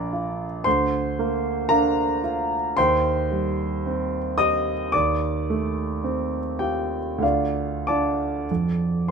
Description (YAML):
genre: classical, romantic nocturne for solo piano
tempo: 44-57 BPM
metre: 4/4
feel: rubato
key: Bb major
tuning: A4 = 436 Hz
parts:
  - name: warm concert grand piano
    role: solo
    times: 0.0-9.1 s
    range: Bb1 to Eb6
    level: -21 LUFS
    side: right 1 dB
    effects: none
room: light reverb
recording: minimal, uncompressed stereo recording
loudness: -21 LUFS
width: side -5 dB against mid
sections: 0.0-9.1 A section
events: none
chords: 0.0 Bb; 0.7 Bb/D; 2.8 Cm/Eb; 4.9 F7/Eb; 7.2 Dm; 8.5 F